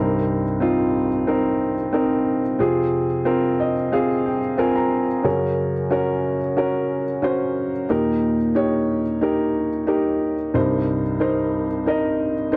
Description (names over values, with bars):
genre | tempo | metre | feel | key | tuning
pop | 91 BPM | 4/4 | straight | unclear | A4 = 439 Hz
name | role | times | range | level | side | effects
warm upright piano | solo | 0.0-12.6 s | C2 to Bb5 | -21 LUFS | equal | none
room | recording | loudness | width
light reverb | dry, close 1970s-style studio recording | -21 LUFS | mono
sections
0.0-12.6 A section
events
upright piano fill 3.3-5.3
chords
0.0 Cm7; 2.6 Fm; 5.3 Gb; 7.9 Eb; 10.5 Cm7